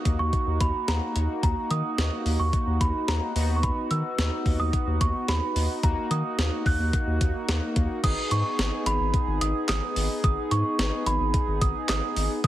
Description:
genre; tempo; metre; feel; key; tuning
synth-pop; 109 BPM; 4/4; straight; G# minor; A4 = 442 Hz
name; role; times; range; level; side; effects
worn celesta; melody; 0.0-12.5 s; A#5 to F#6; -30 LUFS; right 3 dB; ping-pong delay
analog synth brass; accompaniment; 0.0-12.5 s; A#3 to A#4; -30 LUFS; left 1 dB; chorus
round analog bass; bass; 0.1-12.5 s; G#1 to D#3; -26 LUFS; equal; none
clean 12-bit digital drum machine; drums; 0.1-12.5 s; crash cymbal, handclaps, hi-hat, kick drum, snare drum; -27 LUFS; equal; none
room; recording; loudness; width
light reverb, digital ambience; heavily compressed radio sound; -23 LUFS; side -13 dB against mid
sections
0.0-8.0 A section; 8.0-12.5 B section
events
none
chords
0.0 D#m; 3.4 B/D#; 5.8 D#m; 8.0 G#m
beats
0.33 0.88 | 1.43 1.98 2.53 3.08 | 3.63 4.18 4.73 5.28 | 5.83 6.38 6.93 7.49 | 8.04 8.59 9.14 9.69 | 10.24 10.79 11.34 11.89 | 12.44

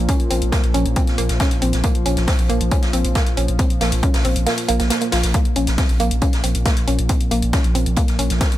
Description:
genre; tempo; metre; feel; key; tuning
driving peak-time techno; 137 BPM; 4/4; straight; unclear; A4 = 440 Hz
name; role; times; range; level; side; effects
saturated sub bass; bass; 0.0-8.4 s; Bb1; -20 LUFS; equal; overdrive, sidechain pumping, low-pass filter
analog drone; drone; 0.0-8.6 s; Bb2 to F3; -26 LUFS; left 1 dB; chorus, sidechain pumping
woody wave-folded pluck; riff; 0.1-8.4 s; Bb3 to F4; -23 LUFS; right 1 dB; chorus, sidechain pumping, dub echo
electronic hi-hat; drums; 0.1-8.6 s; none; -28 LUFS; left 3 dB; overdrive, sidechain pumping on hats
electronic kick drum; drums; 0.1-8.5 s; none; -19 LUFS; equal; overdrive
vintage drum kit; drums; 0.1-8.6 s; hi-hat, snare drum; -28 LUFS; right 1 dB; sidechain pumping on hats, high-pass filter on hats, high-pass filter on snare, high-pass filter on room
room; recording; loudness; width
small room ambience; none; -16 LUFS; side -14 dB against mid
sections
0.0-8.6 A section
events
kick drops out 4.5-5.3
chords
0.0 Bb5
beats
| 0.09 0.53 0.96 1.40 | 1.84 2.28 2.71 3.15 | 3.59 4.03 4.47 4.91 | 5.34 5.78 6.22 6.66 | 7.09 7.53 7.97 8.41

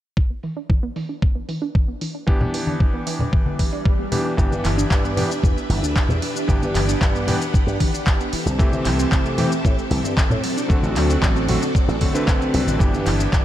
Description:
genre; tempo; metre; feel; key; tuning
nu-disco, nu disco; 114 BPM; 4/4; straight; G major; A4 = 439 Hz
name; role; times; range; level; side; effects
wide unison pluck; arpeggios; 0.2-13.4 s; E3 to D4; -28 LUFS; right 2 dB; sidechain pumping, ping-pong delay
electronic kick drum; drums; 0.2-13.4 s; none; -19 LUFS; equal; none
house drum kit; drums; 0.4-13.4 s; handclaps, hi-hat, shaker; -28 LUFS; equal; overdrive, low-pass filter on hats, low-pass filter on perc, low-pass filter on snare, low-pass filter on room
clear electric grand piano; accompaniment; 2.3-13.4 s; D3 to B4; -26 LUFS; equal; low-pass filter, analog delay
congas and cabasa; percussion; 2.4-13.4 s; none; -27 LUFS; left 1 dB; none
swell; sound effects; 3.5-4.4 s; none; -34 LUFS; equal; none
string machine, full ensemble; sustained chords; 4.4-13.4 s; C4 to F#5; -27 LUFS; equal; ensemble chorus, sidechain pumping
slap bass with an envelope filter; bass; 4.4-13.4 s; G1 to C3; -22 LUFS; equal; none
room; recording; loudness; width
light reverb; none; -18 LUFS; side -12 dB against mid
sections
0.2-4.4 A section; 4.4-13.4 B section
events
filter sweep on synth arpeggio sound 0.2-4.4; swell 3.5-4.4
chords
0.2 G6; 8.3 C6; 10.4 D7; 12.8 G6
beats
| 0.17 0.70 1.22 1.75 | 2.28 2.80 3.33 3.86 | 4.38 4.91 5.43 5.96 | 6.49 7.01 7.54 8.07 | 8.59 9.12 9.64 10.17 | 10.70 11.22 11.75 12.28 | 12.80 13.33

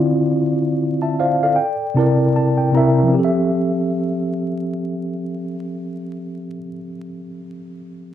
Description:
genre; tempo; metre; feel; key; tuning
hip hop; 77 BPM; 4/4; swing 57% on 16ths; F major; A4 = 442 Hz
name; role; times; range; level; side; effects
mellow tine electric piano; accompaniment; 0.0-8.1 s; C3 to Bb5; -18 LUFS; equal; medium stereo tremolo, cassette tape, low-pass filter
room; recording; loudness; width
wet studio reverb, RT60 0.5 s; dark, warm production, vinyl crackle; -16 LUFS; side -10 dB against mid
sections
0.0-3.1 A section; 3.1-6.3 B section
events
none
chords
0.0 Dm7; 1.6 C7; 3.1 Fmaj7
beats
| 0.02 0.80 1.58 2.36 | 3.13 3.91 4.69 5.47

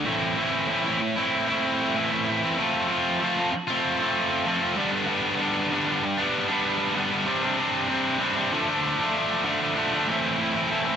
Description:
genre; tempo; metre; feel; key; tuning
rock; 96 BPM; 4/4; straight; A minor; A4 = 443 Hz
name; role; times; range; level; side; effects
high-gain distorted guitar; solo; 0.0-11.0 s; G2 to F4; -22 LUFS; equal; distortion
room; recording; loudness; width
moderate lush hall reverb, RT60 1.9 s; big arena sound, nothing above 7.9 kHz; -22 LUFS; side -8 dB against mid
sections
0.1-10.1 A section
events
none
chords
0.1 Am; 2.6 F; 4.8 G; 7.3 Csus2; 8.5 Dm; 10.1 Am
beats
| 0.07 0.70 1.33 1.96 | 2.59 3.21 3.84 4.47 | 5.09 5.72 6.34 6.97 | 7.59 8.22 8.84 9.47 | 10.09 10.72

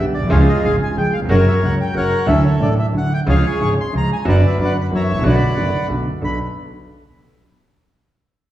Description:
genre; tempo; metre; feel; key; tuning
tango; 183 BPM; 3/4; rubato; unclear; A4 = 440 Hz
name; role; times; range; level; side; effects
bandoneon; melody; 0.0-6.4 s; E#4 to C#6; -21 LUFS; left 1 dB; none
warm grand piano; accompaniment; 0.0-6.4 s; F#1 to A4; -17 LUFS; equal; none
upright bass; bass; 0.0-6.4 s; F#1 to D2; -20 LUFS; right 1 dB; none
room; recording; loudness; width
wet recital hall reverb, RT60 1.6 s; recorded in a church or concert hall, small room ambience; -14 LUFS; side -13 dB against mid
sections
0.0-6.2 A section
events
none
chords
0.3 C#; 1.3 F#; 2.3 Dadd9; 3.3 C#; 4.3 Bm/F#; 4.9 F#7; 5.2 Bm7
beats
| 0.30 0.63 0.95 | 1.28 1.61 1.94 | 2.28 2.61 2.94 | 3.27 3.60 3.93 | 4.26 4.58 4.91 | 5.24 5.56 5.89 | 6.23

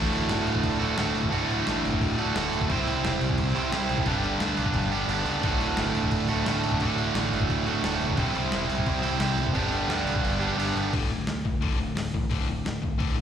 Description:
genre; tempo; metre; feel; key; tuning
punk rock; 175 BPM; 4/4; straight; D mixolydian; A4 = 440 Hz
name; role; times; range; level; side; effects
distorted electric guitar; riff; 0.0-13.2 s; D2 to C4; -30 LUFS; left 9 dB; overdrive, slapback echo
distorted electric guitar; riff; 0.0-10.9 s; D2 to C5; -27 LUFS; right 8 dB; overdrive, slapback echo
growling picked electric bass; bass; 0.0-13.2 s; D1 to D2; -31 LUFS; equal; overdrive
dusty soul sampler-style drum kit; drums; 0.1-13.1 s; crash cymbal, hi-hat, kick drum, snare drum; -31 LUFS; equal; none
room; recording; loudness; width
little or no reverb; live gig heard through the venue's PA, recital hall reverb; -24 LUFS; side -9 dB against mid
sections
0.0-10.9 A section; 10.9-13.2 B section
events
kick and snare drop out 5.1-5.4, 10.2-10.9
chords
0.0 D; 2.7 C; 4.1 G; 5.4 D; 8.2 C; 9.6 G; 10.9 D5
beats
0.29 0.63 0.98 | 1.32 1.66 2.00 2.35 | 2.69 3.03 3.38 3.72 | 4.06 4.41 4.75 5.09 | 5.43 5.78 6.12 6.46 | 6.81 7.15 7.49 7.84 | 8.18 8.52 8.87 9.21 | 9.55 9.90 10.24 10.59 | 10.93 11.27 11.62 11.96 | 12.31 12.65 13.00

